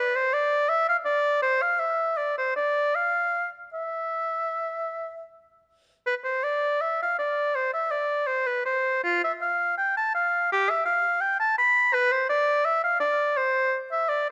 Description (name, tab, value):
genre	classical, baroque-style fantasia for unaccompanied oboe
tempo	76-85 BPM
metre	4/4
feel	rubato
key	unclear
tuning	A4 = 440 Hz
part	clear oboe	solo	0.0-14.3 s	F4 to B5	-25 LUFS	equal	none
room	moderate recital hall reverb, RT60 1.5 s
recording	close, detailed microphones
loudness	-25 LUFS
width	mono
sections	0.0-14.3 A section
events	none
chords	none